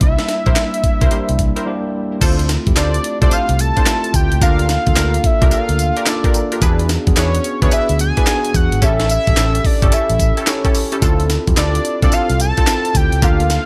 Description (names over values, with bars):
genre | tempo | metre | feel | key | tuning
R&B, new jack swing | 109 BPM | 4/4 | swing 64% on 16ths | D minor | A4 = 440 Hz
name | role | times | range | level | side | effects
fat analog lead | melody | 0.0-13.7 s | C#5 to A5 | -23 LUFS | equal | chorus
tine electric piano | accompaniment | 0.0-13.7 s | G3 to A4 | -25 LUFS | equal | none
vintage muted fingered electric bass | bass | 0.0-13.6 s | G1 to F2 | -20 LUFS | equal | none
breakbeat sampler-style drum kit | drums | 0.0-13.7 s | crash cymbal, handclaps, hi-hat, kick drum, snare drum, tambourine | -18 LUFS | equal | none
funky polysynth comp | stabs | 0.5-13.5 s | Bb3 to C5 | -27 LUFS | equal | chorus, tremolo
room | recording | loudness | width
little or no reverb | none | -15 LUFS | mono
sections
0.0-2.2 A section; 2.2-13.7 B section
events
break 1.7-2.2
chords
0.0 C7; 2.2 Dm7; 4.4 Gm7; 6.6 E7; 8.8 A7; 11.0 Dm7